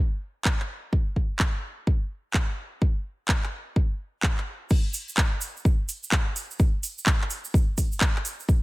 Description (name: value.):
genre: house.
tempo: 127 BPM.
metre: 4/4.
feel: swing 62% on 16ths.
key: none.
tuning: none.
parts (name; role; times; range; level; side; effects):
house drum kit; drums; 0.4-8.4 s; crash cymbal, handclaps, hi-hat; -28 LUFS; equal; none.
electronic kick drum; drums; 0.5-8.6 s; none; -22 LUFS; equal; none.
egg shaker; percussion; 4.7-8.6 s; none; -36 LUFS; right 4 dB; none.
room: little or no reverb.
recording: none.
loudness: -24 LUFS.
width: side -21 dB against mid.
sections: 0.0-4.7 A section; 4.7-8.6 B section.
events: drop 4.7-8.6.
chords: none.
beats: 0.45 | 0.93 1.40 1.87 2.34 | 2.82 3.29 3.76 4.23 | 4.71 5.18 5.65 6.12 | 6.60 7.07 7.54 8.01 | 8.49.